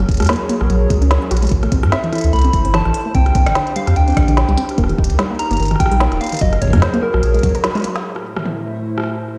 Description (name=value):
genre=IDM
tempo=147 BPM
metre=4/4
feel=swing 56% on 16ths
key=unclear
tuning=A4 = 440 Hz
part: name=hollow soft pad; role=sustained chords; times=0.0-9.4 s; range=A2 to E5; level=-27 LUFS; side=equal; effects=chorus, vintage 12-bit sampler grit, sidechain pumping, shimmer reverb
part: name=warbly dusty pluck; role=arpeggios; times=0.0-7.9 s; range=D3 to Bb4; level=-25 LUFS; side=equal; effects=chorus, digital delay, shimmer reverb
part: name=warm sub bass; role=bass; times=0.0-7.5 s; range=Eb1 to A2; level=-18 LUFS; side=equal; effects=tube saturation
part: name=organic electronic drum kit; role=drums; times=0.0-9.1 s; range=hi-hat, rim click, snare drum, toms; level=-25 LUFS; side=equal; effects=none
part: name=electronic kick drum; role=drums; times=0.1-7.5 s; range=none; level=-20 LUFS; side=equal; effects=none
part: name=soft struck synth lead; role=melody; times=1.9-7.8 s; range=Bb4 to B5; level=-24 LUFS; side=equal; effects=chorus, tremolo, digital delay, shimmer reverb
room=moderate lush hall reverb, RT60 2.0 s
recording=played on a big sound system in a bare room, stone room reverb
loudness=-16 LUFS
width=mono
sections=0.0-8.0 A section; 8.0-9.4 B section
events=break 7.6-8.0; band accent 7.6; drum fill 7.8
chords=0.0 Gbadd9; 1.5 Am; 3.1 Csus2; 4.8 Eb; 6.4 Gbadd9; 8.0 Am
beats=0.29 0.70 1.11 | 1.51 1.92 2.33 2.74 | 3.15 3.56 3.96 4.37 | 4.78 5.19 5.60 6.00 | 6.41 6.82 7.23 7.64 | 8.05 8.45 8.86 9.27